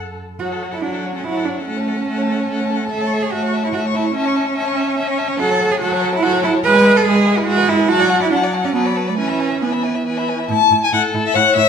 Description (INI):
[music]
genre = quick classical-period movement for string quartet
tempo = 144 BPM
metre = 3/4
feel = rubato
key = F# minor, A major from 5.4 s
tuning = A4 = 435 Hz
[part]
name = rich violin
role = second line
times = 0.0-11.7 s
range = F#4 to F#5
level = -24 LUFS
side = left 3 dB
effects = none
[part]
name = warm viola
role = accompaniment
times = 0.0-11.6 s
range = E3 to A4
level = -21 LUFS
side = right 1 dB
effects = none
[part]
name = warm cello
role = bass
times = 0.0-11.6 s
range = F#2 to B4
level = -18 LUFS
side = right 4 dB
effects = none
[part]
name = rich violin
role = melody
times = 0.4-11.7 s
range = C#5 to C#6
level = -21 LUFS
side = left 8 dB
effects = none
[sound]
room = wet recital hall reverb, RT60 1.5 s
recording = minimal, uncompressed stereo recording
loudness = -15 LUFS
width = side -7 dB against mid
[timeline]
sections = 0.4-10.5 A section; 10.5-11.7 B section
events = none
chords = 0.4 F#m; 1.7 F#m/A; 2.9 A; 4.2 A/C#; 5.4 F#m; 6.6 E/G#; 7.9 D/F#; 8.7 Bm7/F#; 9.2 E; 10.5 A